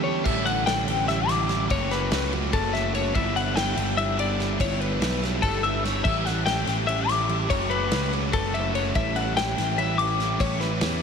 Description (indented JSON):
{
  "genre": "math rock and midwest emo",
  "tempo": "290 BPM (eighths)",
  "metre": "7/8",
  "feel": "straight",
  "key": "unclear",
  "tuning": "A4 = 440 Hz",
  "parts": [
    { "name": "twelve-string electric guitar", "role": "accompaniment", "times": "0.0-1.7 s", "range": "E2 to E4", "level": "-33 LUFS", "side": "right 11 dB", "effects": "wide subtle chorus" },
    { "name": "twelve-string electric guitar", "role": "arpeggios", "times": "0.0-11.0 s", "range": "A4 to D6", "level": "-26 LUFS", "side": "left 5 dB", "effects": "none" },
    { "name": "overdriven electric guitar", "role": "riff", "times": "0.0-11.0 s", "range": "A2 to G4", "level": "-29 LUFS", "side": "right 4 dB", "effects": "none" },
    { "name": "fuzz picked electric bass", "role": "bass", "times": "0.3-11.0 s", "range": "F#1 to E2", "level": "-28 LUFS", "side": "equal", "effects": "overdrive" },
    { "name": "loose indie drum kit", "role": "drums", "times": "0.3-10.9 s", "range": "crash cymbal, kick drum, ride cymbal, snare drum", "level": "-30 LUFS", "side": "equal", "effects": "none" }
  ],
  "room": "moderate huge ambient reverb, RT60 7.1 s",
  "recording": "dreamy mix soaked in reverb",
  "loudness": "-22 LUFS",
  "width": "side -6 dB against mid",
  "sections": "0.3-11.0 A section",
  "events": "break 0.0",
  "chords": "0.3 A7sus4; 1.7 F#m7; 3.2 Em7/G; 6.1 A7sus4; 7.5 F#m7; 9.0 A7sus4",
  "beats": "0.05 | 0.26 0.47 0.67 0.88 1.09 1.29 1.50 | 1.71 1.92 2.12 2.33 2.54 2.74 2.95 | 3.16 3.37 3.57 3.78 3.99 4.19 4.40 | 4.61 4.82 5.02 5.23 5.44 5.64 5.85 | 6.06 6.27 6.47 6.68 6.89 7.09 7.30 | 7.51 7.72 7.92 8.13 8.34 8.54 8.75 | 8.96 9.16 9.37 9.58 9.78 9.99 10.20 | 10.40 10.61 10.82"
}